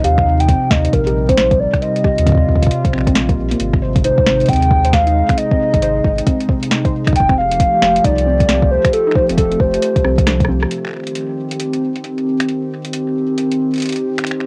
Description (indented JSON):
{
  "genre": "IDM",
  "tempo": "135 BPM",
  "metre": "4/4",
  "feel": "swing 62% on 16ths",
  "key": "unclear",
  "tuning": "A4 = 439 Hz",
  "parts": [
    { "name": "warbly nostalgic lead", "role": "melody", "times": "0.0-10.5 s", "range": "A4 to G5", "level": "-19 LUFS", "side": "equal", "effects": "subtle chorus, cassette tape, tape echo" },
    { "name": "warbly tape-like pad", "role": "sustained chords", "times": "0.0-14.5 s", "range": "C3 to G4", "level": "-22 LUFS", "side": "equal", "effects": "chorus, built-in reverb, cassette tape" },
    { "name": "warbly dusty pluck", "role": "arpeggios", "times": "0.0-10.6 s", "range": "C3 to C5", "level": "-27 LUFS", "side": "equal", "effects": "chorus, cassette tape, tape echo" },
    { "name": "warm sub bass", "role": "bass", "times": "0.0-10.7 s", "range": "F1 to Eb2", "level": "-21 LUFS", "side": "equal", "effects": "none" },
    { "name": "booming analog drum machine", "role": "drums", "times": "0.0-14.5 s", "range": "finger snaps, hi-hat, rim click, snare drum", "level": "-24 LUFS", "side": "equal", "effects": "cassette tape" },
    { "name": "electronic kick drum", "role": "drums", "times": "0.2-10.5 s", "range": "none", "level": "-18 LUFS", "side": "equal", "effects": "cassette tape" }
  ],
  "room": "light reverb",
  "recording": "home recording on cassette",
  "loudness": "-15 LUFS",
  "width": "mono",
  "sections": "0.0-10.7 A section; 10.7-14.5 B section",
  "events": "drum fill 10.0-10.7",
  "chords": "0.0 Eb6; 3.6 Ab; 7.2 Fadd9; 10.7 Eb6"
}